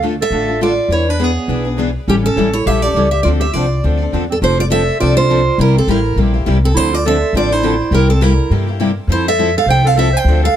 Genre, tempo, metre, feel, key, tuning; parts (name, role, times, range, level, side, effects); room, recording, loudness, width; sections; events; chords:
acoustic string swing (jazz manouche); 205 BPM; 4/4; swing 57% on 8ths; D minor, F major from 4.4 s; A4 = 440 Hz
picked steel-string acoustic guitar; melody; 0.0-10.6 s; G4 to G5; -17 LUFS; right 1 dB; tape echo
picked steel-string acoustic guitar; accompaniment; 0.0-10.5 s; C3 to A4; -20 LUFS; left 6 dB
picked steel-string acoustic guitar; accompaniment; 0.0-10.5 s; C3 to B4; -24 LUFS; right 4 dB
upright bass; bass; 0.0-10.5 s; F1 to G2; -16 LUFS; left 1 dB
warm clarinet; second line; 0.2-10.6 s; B3 to C5; -20 LUFS; right 6 dB
light reverb; close, detailed microphones; -12 LUFS; side -10 dB against mid
0.0-4.4 A section; 4.4-10.6 B section
0.0 Dm; 0.9 E7; 2.1 A7; 3.3 Dm7; 4.4 F6; 5.6 C7; 6.8 Dm9; 7.9 C7; 9.1 Fmaj7